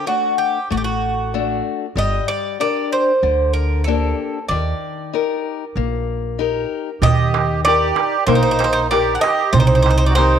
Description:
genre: greek folk, Greek bouzouki band.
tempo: 95 BPM.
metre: 4/4.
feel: straight.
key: unclear.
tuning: A4 = 442 Hz.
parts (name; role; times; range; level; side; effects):
Greek bouzouki; melody; 0.0-10.4 s; F#4 to F#5; -20 LUFS; right 2 dB; none.
picked old ladder-braced acoustic guitar; accompaniment; 0.0-10.4 s; C3 to F#5; -22 LUFS; left 10 dB; none.
upright bass; bass; 0.7-10.4 s; G1 to Eb2; -20 LUFS; right 1 dB; none.
accordion; second line; 7.0-10.4 s; Eb4 to A4; -20 LUFS; right 6 dB; light tremolo tuning.
darbuka; percussion; 7.0-10.3 s; none; -20 LUFS; right 7 dB; none.
room: light reverb, small room ambience.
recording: 1960s-style stereo with parts hard left and right.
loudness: -16 LUFS.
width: side -8 dB against mid.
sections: 0.0-7.0 A section; 7.0-10.4 B section.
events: none.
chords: 0.0 D; 2.0 Gm; 4.5 Eb; 9.5 Cm.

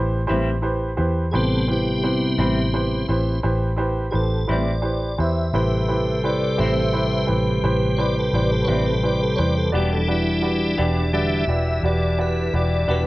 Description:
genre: slow blues.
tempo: 57 BPM (dotted quarters).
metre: 12/8.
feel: straight.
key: unclear.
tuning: A4 = 440 Hz.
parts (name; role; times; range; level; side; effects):
clear upright piano; accompaniment; 0.0-13.1 s; E4 to D5; -25 LUFS; right 2 dB; none.
vintage muted fingered electric bass; bass; 0.0-13.1 s; E1 to E2; -23 LUFS; equal; none.
semi-hollow electric guitar; accompaniment; 0.3-13.1 s; A2 to G4; -28 LUFS; left 2 dB; harmonic tremolo.
tonewheel organ; sustained chords; 1.3-13.1 s; C3 to E5; -22 LUFS; left 1 dB; chorus vibrato, wide subtle chorus.
dark saxophone section; sustained chords; 5.5-13.1 s; D4 to B4; -31 LUFS; equal; none.
room: light reverb, small room ambience.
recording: worn, warbling old tape, cassette tape, warbly pitch drift.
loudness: -18 LUFS.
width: side -18 dB against mid.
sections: 0.0-13.1 A section.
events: tonewheel organ solo 0.0-13.1.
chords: 0.0 Am7; 9.7 Em7.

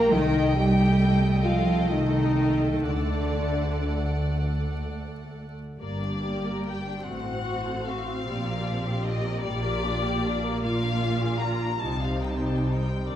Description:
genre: classical.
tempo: 39-52 BPM (dotted quarters).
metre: 6/8.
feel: rubato.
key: G minor.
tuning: A4 = 439 Hz.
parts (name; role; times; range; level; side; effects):
muted chamber violin section; melody; 0.0-13.2 s; D5 to Bb5; -34 LUFS; left 5 dB; none.
muted chamber violin section; second line; 0.0-13.2 s; G3 to G5; -35 LUFS; left 3 dB; none.
muted chamber viola section; accompaniment; 0.0-13.2 s; G3 to A4; -33 LUFS; right 2 dB; none.
mellow French horn section; sustained chords; 0.0-4.3 s; D4 to Bb4; -26 LUFS; left 1 dB; none.
muted chamber double bass section; bass; 0.0-13.2 s; G1 to D2; -28 LUFS; right 1 dB; none.
muted studio cello section; bass; 0.0-13.2 s; G2 to Bb3; -29 LUFS; right 1 dB; none.
room: wet recital hall reverb, RT60 1.4 s.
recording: minimal, uncompressed stereo recording, vinyl crackle.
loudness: -23 LUFS.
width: side -11 dB against mid.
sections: 0.0-5.8 A section; 5.8-13.2 B section.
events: none.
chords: 0.1 Am7b5/C; 2.9 D; 5.8 Gm; 7.0 F#dim/A; 8.2 Gm/Bb; 10.6 Bb; 11.8 Cm.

